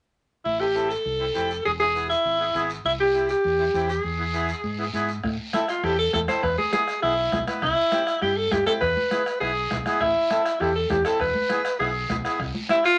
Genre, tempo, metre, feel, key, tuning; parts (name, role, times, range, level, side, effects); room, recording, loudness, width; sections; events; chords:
latin, cumbia; 201 BPM; 4/4; straight; A minor; A4 = 442 Hz
bright alto saxophone; melody; 0.5-13.0 s; E4 to C5; -24 LUFS; equal
fingered electric bass; bass; 0.5-12.5 s; E1 to A2; -34 LUFS; equal
guiro; percussion; 0.5-13.0 s; -41 LUFS; equal
accordion; accompaniment; 0.6-12.8 s; B3 to B4; -32 LUFS; equal
bombo; percussion; 5.2-13.0 s; -35 LUFS; equal
congas; percussion; 5.2-12.8 s; -36 LUFS; equal
moderate studio reverb, RT60 0.6 s; nothing above 10.4 kHz; -24 LUFS; mono
0.5-5.2 A section; 5.2-13.0 B section
0.5 Am; 1.6 E; 2.8 C; 4.0 E; 5.2 Am; 6.4 E; 7.6 C; 8.8 E; 10.0 Am; 11.2 E; 12.4 C